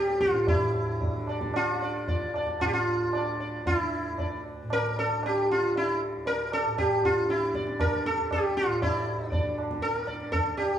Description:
indian classical, Hindustani; 116 BPM; 4/4; straight; D raga darbari; A4 = 442 Hz
sitar; melody; 0.0-10.8 s; E4 to D5; -27 LUFS; equal
tanpura; drone; 0.0-10.8 s; D2 to D3; -35 LUFS; right 1 dB
tabla; percussion; 0.1-10.8 s; -32 LUFS; right 1 dB
moderate recital hall reverb, RT60 1.6 s; -25 LUFS; side -10 dB against mid
0.5-8.8 A section; 8.8-10.8 B section
speeding up 0.0-10.8

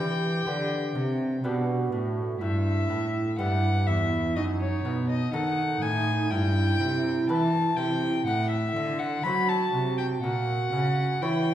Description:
classical, baroque-style sonata movement with continuo; 61 BPM; 4/4; straight; E minor; A4 = 440 Hz
dark violin; melody; 0.0-11.5 s; C#5 to B5; -29 LUFS; left 3 dB
baroque flute; second line; 0.0-11.5 s; D#4 to G4; -30 LUFS; right 4 dB
lute; accompaniment; 0.0-11.5 s; E2 to C#5; -34 LUFS; left 1 dB
rich cello; bass; 0.0-11.5 s; E2 to F#3; -28 LUFS; equal
wet recital hall reverb, RT60 1.7 s; heard from further back in the room; -24 LUFS; side -11 dB against mid
0.0-11.5 A section
0.0 G; 2.4 Em/G; 4.4 D#dim/F#; 6.3 Em/G; 8.3 F#m7b5/A; 10.2 A#dim

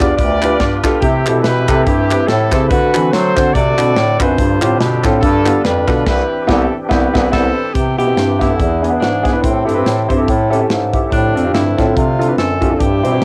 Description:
uptempo gospel; 143 BPM; 4/4; swing 57% on 8ths; C major; A4 = 439 Hz
clear horn section; melody; 0.0-7.7 s; C4 to D5; -20 LUFS; equal; cassette tape
warm upright piano; accompaniment; 0.0-13.2 s; G2 to D5; -19 LUFS; equal; cassette tape
bright tonewheel organ; sustained chords; 0.0-13.2 s; D3 to A4; -27 LUFS; equal
warm bass clarinet; bass; 0.0-13.2 s; C2 to F#3; -19 LUFS; equal
modern studio drum kit; drums; 0.0-13.2 s; crash cymbal, hi-hat, kick drum, snare drum; -21 LUFS; equal; cassette tape
group handclap; percussion; 0.0-6.0 s; -25 LUFS; equal
breathy tenor saxophone; melody; 7.3-13.2 s; C4 to A4; -24 LUFS; equal; cassette tape, tape echo
dark French horn section; sustained chords; 7.7-13.2 s; F3 to E5; -32 LUFS; equal
light reverb; home recording on cassette; -14 LUFS; mono
0.0-7.7 A section; 7.7-13.2 B section
band accent 6.1-7.7
0.0 G7; 1.0 C6; 2.7 D7; 4.4 G7sus4; 5.2 G7; 6.1 Cmaj7; 8.6 E7; 9.4 Am7; 10.3 A7; 11.1 Dm7

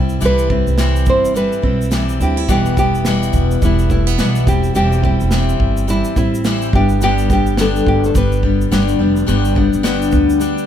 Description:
acoustic pop; 106 BPM; 4/4; swing 60% on 16ths; C major; A4 = 440 Hz
nylon-string guitar; melody; 0.0-10.7 s; E4 to C5; -20 LUFS; right 2 dB
picked steel-string acoustic guitar; accompaniment; 0.0-10.7 s; E2 to G4; -18 LUFS; left 6 dB
fingerpicked plugged-in steel-string acoustic guitar; arpeggios; 0.0-10.7 s; G3 to E4; -24 LUFS; right 9 dB
upright bass; bass; 0.0-10.5 s; E1 to D2; -17 LUFS; right 1 dB
natural country drum kit; drums; 0.1-10.7 s; kick drum, shaker, snare drum; -20 LUFS; equal
light reverb; -13 LUFS; side -10 dB against mid
0.0-10.7 A section
0.0 C; 2.5 Em; 4.5 C/E; 6.7 G

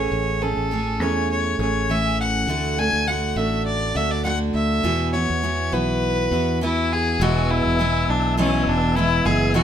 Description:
acoustic pop; 102 BPM; 4/4; swing 55% on 16ths; A4 = 440 Hz
warm violin; melody; 0.0-9.6 s; C#4 to G#5; -23 LUFS; left 2 dB
picked steel-string acoustic guitar; accompaniment; 0.0-9.6 s; E2 to G#4; -23 LUFS; right 3 dB
fingered electric bass; bass; 0.0-9.6 s; E1 to E2; -25 LUFS; left 1 dB
mellow tonewheel organ; sustained chords; 7.2-9.6 s; B4 to E6; -30 LUFS; left 3 dB; chorus vibrato, fast rotary speaker
moderate studio reverb, RT60 0.7 s; minimal, uncompressed stereo recording; -19 LUFS; side -9 dB against mid
0.0-7.2 A section; 7.2-9.6 B section
0.0 Amaj7; 2.5 D; 4.8 Esus2; 7.2 E

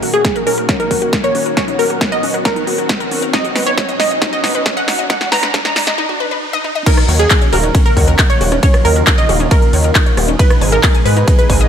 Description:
uplifting trance; 136 BPM; 4/4; straight; Eb minor; A4 = 440 Hz
wide unison pluck; melody; 0.0-11.7 s; Ab4 to Bb5; -19 LUFS; right 1 dB; sidechain pumping, ping-pong delay
plucky unison lead; second line; 0.0-11.7 s; Ab4 to Bb5; -22 LUFS; right 1 dB; sidechain pumping, ping-pong delay
analog string pad; sustained chords; 0.0-11.7 s; Bb2 to Ab4; -23 LUFS; equal; ensemble chorus, sidechain pumping
analog pluck; arpeggios; 0.0-11.7 s; Db4 to Ab5; -23 LUFS; left 4 dB; chorus, sidechain pumping, ping-pong delay
big-room dance drum kit; drums; 0.0-11.7 s; crash cymbal, handclaps, hi-hat, ride cymbal, rim click, snare drum; -18 LUFS; equal
riser; sound effects; 0.0-6.9 s; -24 LUFS; right 2 dB
electronic kick drum; drums; 0.2-11.6 s; -14 LUFS; equal
gritty driven synth bass; bass; 7.1-11.7 s; Eb1 to Ab2; -14 LUFS; equal; distortion, sidechain pumping
light reverb, digital ambience; high-pass filter; -11 LUFS; side -8 dB against mid
0.0-6.9 A section; 6.9-11.7 B section
build-up 0.0-6.9; drum fill 0.0-6.0; riser 0.0-6.9; filter sweep on synth arpeggio sound 0.0-6.9; filter sweep 0.0-6.9; break 6.0-6.9; drop 6.9-11.7
0.0 Ebm7; 3.3 B; 6.9 Ebm7; 10.4 Abm

